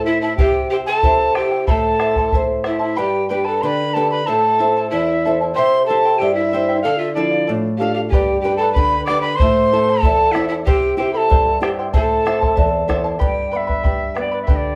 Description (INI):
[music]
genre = andean folk, Andean ensemble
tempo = 94 BPM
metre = 2/4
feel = straight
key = unclear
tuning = A4 = 439 Hz
[part]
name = bright reedy quena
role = melody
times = 0.0-14.8 s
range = D5 to D6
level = -22 LUFS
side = equal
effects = none
[part]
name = breathy pan flute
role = second line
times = 0.0-12.9 s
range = E4 to D5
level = -22 LUFS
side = equal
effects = none
[part]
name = charango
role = accompaniment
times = 0.0-14.8 s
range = E4 to B5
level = -27 LUFS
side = equal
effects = none
[part]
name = nylon-string guitar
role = accompaniment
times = 0.0-14.8 s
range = E2 to C5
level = -24 LUFS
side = equal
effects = none
[part]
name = bombo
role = percussion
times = 0.4-2.8, 8.1-14.6 s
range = none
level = -22 LUFS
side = equal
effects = none
[sound]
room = wet studio reverb, RT60 0.6 s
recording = heard from further back in the room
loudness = -17 LUFS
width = mono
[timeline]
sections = 0.0-3.0 A section; 3.0-13.2 A section; 13.2-14.8 B section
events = none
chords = 0.4 C; 1.7 Am; 3.0 G; 4.3 Am; 5.6 C; 6.8 Dm; 8.1 G; 9.4 Am; 10.7 C; 11.9 Am; 13.2 G